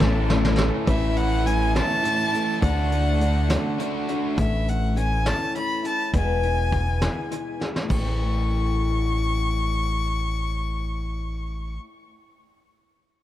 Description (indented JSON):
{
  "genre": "folk rock and heartland rock",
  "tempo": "68 BPM (dotted quarters)",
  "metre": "6/8",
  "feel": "straight",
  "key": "A major",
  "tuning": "A4 = 439 Hz",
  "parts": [
    { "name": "rich fiddle", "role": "melody", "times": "0.0-11.8 s", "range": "E5 to C#6", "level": "-28 LUFS", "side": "left 1 dB", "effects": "analog delay" },
    { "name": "picked old ladder-braced acoustic guitar", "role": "accompaniment", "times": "0.0-11.9 s", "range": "E2 to F#4", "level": "-29 LUFS", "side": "left 5 dB", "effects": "analog delay" },
    { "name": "tonewheel organ", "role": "sustained chords", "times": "0.0-0.9 s", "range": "A3 to A4", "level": "-33 LUFS", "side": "right 2 dB", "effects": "none" },
    { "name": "biting overdriven guitar", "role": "riff", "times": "0.0-4.4 s", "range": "A2 to F#4", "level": "-27 LUFS", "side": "right 2 dB", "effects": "analog delay" },
    { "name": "deep dub fingered electric bass", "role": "bass", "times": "0.0-11.8 s", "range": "E1 to D2", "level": "-24 LUFS", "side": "equal", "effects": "none" },
    { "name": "soft brush drum kit", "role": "drums", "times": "0.0-8.0 s", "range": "crash cymbal, hi-hat, kick drum, snare drum", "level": "-27 LUFS", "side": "equal", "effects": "analog delay" }
  ],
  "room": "little or no reverb",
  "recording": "echo-heavy mix",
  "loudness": "-21 LUFS",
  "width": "side -13 dB against mid",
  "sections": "0.9-7.9 A section; 7.9-11.4 B section",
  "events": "drum fill 0.0-0.9, 7.6",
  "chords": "0.0 A; 2.6 D; 4.4 A; 6.1 E; 7.9 A"
}